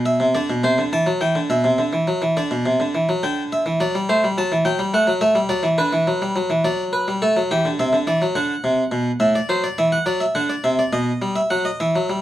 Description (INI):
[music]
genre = classical, baroque-style two-part invention for harpsichord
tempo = 70 BPM (dotted quarters)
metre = 6/8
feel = straight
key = G major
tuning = A4 = 436 Hz
[part]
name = harpsichord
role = solo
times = 0.0-12.2 s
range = A2 to A5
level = -17 LUFS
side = equal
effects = none
[sound]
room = moderate studio reverb, RT60 0.7 s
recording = minimal, uncompressed stereo recording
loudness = -17 LUFS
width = side -13 dB against mid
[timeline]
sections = 0.0-3.2 A section; 3.2-6.6 B section; 6.6-12.2 A section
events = none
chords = 0.0 G/B (rootless); 0.6 Am7/C; 1.5 Bmadd11; 3.2 G5/D; 4.1 Am7; 4.9 D; 5.8 G/D; 6.6 D/F#; 7.5 C; 8.4 Bm; 9.2 Am; 10.1 Cadd9; 10.9 B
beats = 0.62 | 1.49 2.36 | 3.23 4.09 | 4.93 5.78 | 6.65 7.51 | 8.37 9.22 | 10.06 10.92 | 11.79